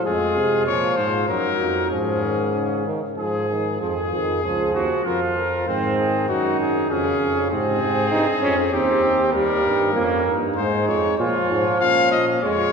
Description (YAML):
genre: classical, imitative canzona for brass ensemble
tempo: 97 BPM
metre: 3/4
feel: straight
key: Db major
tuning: A4 = 444 Hz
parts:
  - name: clear trumpet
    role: melody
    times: 0.0-12.7 s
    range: Gb4 to F5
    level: -24 LUFS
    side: left 6 dB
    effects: none
  - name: mellow trumpet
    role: second line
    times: 0.0-12.7 s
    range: C4 to Ab4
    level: -26 LUFS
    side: right 3 dB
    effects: none
  - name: bright trombone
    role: accompaniment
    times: 0.0-12.7 s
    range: C3 to Eb4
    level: -23 LUFS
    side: right 2 dB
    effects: none
  - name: clear bass trombone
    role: bass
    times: 0.1-12.6 s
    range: Db2 to C3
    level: -25 LUFS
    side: equal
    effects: none
room: wet concert hall reverb, RT60 2.3 s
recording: heard from further back in the room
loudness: -18 LUFS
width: side -5 dB against mid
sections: 0.0-3.8 A section; 3.8-11.2 B section; 11.2-12.7 C section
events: none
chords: 0.1 Db/F; 1.3 Ebm/Gb; 1.9 Absus4; 3.2 Ab5; 3.8 Db/F; 5.1 Fsus4; 5.7 Ab; 6.9 Db/F; 7.5 Ab; 8.7 Cm/Eb; 9.3 Eb; 10.6 Ab; 11.2 Bbm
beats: | 0.06 0.67 1.29 | 1.91 2.54 3.18 | 3.81 4.44 5.06 | 5.67 6.29 6.90 | 7.51 8.12 8.73 | 9.34 9.95 10.57 | 11.20 11.81 12.43